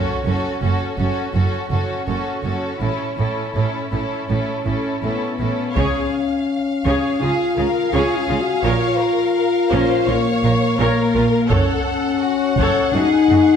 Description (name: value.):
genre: cinematic, epic orchestral film score.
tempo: 83 BPM.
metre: 4/4.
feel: straight.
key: Db major.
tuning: A4 = 440 Hz.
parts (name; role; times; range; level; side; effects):
rich symphonic violin section; melody; 0.0-13.6 s; A4 to Gb5; -28 LUFS; left 3 dB; none.
clear symphonic violin section; second line; 0.0-13.6 s; E4 to Db5; -26 LUFS; left 2 dB; none.
rich symphonic viola section; accompaniment; 0.0-13.4 s; A3 to Db5; -25 LUFS; right 1 dB; none.
clear symphonic cello section; bass; 0.3-13.4 s; Gb2 to Db3; -24 LUFS; right 3 dB; none.
warm symphonic double bass section; bass; 0.3-13.4 s; Gb1 to Db2; -24 LUFS; right 4 dB; none.
dark French horn section; sustained chords; 5.0-13.6 s; Bb3 to Gb4; -18 LUFS; left 4 dB; none.
taiko ensemble; drums; 5.8-12.9 s; none; -26 LUFS; equal; none.
room: wet scoring stage reverb, RT60 1.5 s.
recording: none.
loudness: -17 LUFS.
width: side -7 dB against mid.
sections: 0.0-5.8 A section; 5.8-13.6 B section.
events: build-up 0.0-5.8.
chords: 0.0 Gbm; 2.8 A; 5.8 Db; 8.6 Bbm; 11.5 Gbm.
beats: 0.63 1.35 2.08 | 2.81 3.56 4.29 5.03 | 5.76 6.49 7.21 7.93 | 8.65 9.36 10.08 10.80 | 11.51 12.22 12.94.